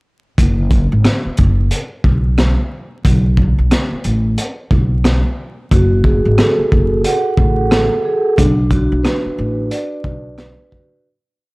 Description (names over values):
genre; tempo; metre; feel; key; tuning
hip hop, boom-bap hip-hop; 90 BPM; 4/4; swing 61% on 16ths; unclear; A4 = 443 Hz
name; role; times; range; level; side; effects
upright bass; bass; 0.4-10.5 s; F#1 to B1; -15 LUFS; equal; none
crunchy breakbeat drum kit; drums; 0.4-10.9 s; hi-hat, kick drum, rim click, snare drum; -16 LUFS; equal; none
vibraphone with soft mallets; accompaniment; 5.7-11.1 s; D4 to F#5; -16 LUFS; right 1 dB; high-pass filter, low-pass filter
room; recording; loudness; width
small room ambience; dry, gritty hardware recording, vinyl crackle; -12 LUFS; side -25 dB against mid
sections
0.4-11.0 verse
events
fade-out 8.4-11.0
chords
0.4 N.C.; 3.0 Asus2; 5.7 F#madd9; 8.4 Bm